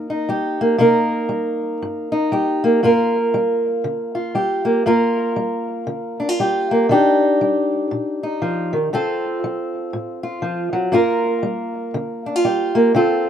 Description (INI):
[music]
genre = blues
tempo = 118 BPM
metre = 4/4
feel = swing 61% on 8ths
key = G minor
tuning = A4 = 437 Hz
[part]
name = fingerpicked old ladder-braced acoustic guitar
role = solo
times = 0.0-13.3 s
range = G2 to Bb4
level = -17 LUFS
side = equal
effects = slapback echo
[sound]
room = little or no reverb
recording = recorded outdoors, with no room sound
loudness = -17 LUFS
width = side -9 dB against mid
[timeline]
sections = 0.0-13.3 A section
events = none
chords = 0.0 Cm7; 2.8 Gm7; 6.9 Ebmaj7; 8.9 D7#9; 10.9 Gm7